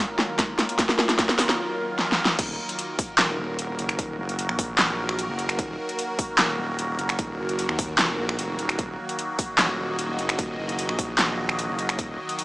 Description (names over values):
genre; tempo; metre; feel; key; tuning
heavy wobble dubstep; 150 BPM; 4/4; half-time; Eb minor; A4 = 442 Hz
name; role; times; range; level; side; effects
evolving wavetable pad; sustained chords; 0.0-12.4 s; Eb3 to Eb5; -29 LUFS; equal; phaser, built-in reverb, sidechain pumping
dubstep drum kit; drums; 0.2-12.4 s; crash cymbal, finger snaps, handclaps, hi-hat, snare drum; -23 LUFS; equal; none
electronic kick drum; drums; 0.4-12.1 s; none; -30 LUFS; equal; none
wobble bass; bass; 2.4-12.2 s; Eb1 to Eb2; -31 LUFS; equal; chorus, overdrive
room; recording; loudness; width
moderate lush hall reverb, RT60 2.3 s; small speaker sound; -22 LUFS; side -20 dB against mid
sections
0.0-2.4 A section; 2.4-12.4 B section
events
build-up 0.0-2.4; drum fill 0.0-1.6, 2.0-2.4; filter sweep on ambient pad 0.0-2.4; break 1.6-2.4; drop 2.4-12.4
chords
0.0 Ebm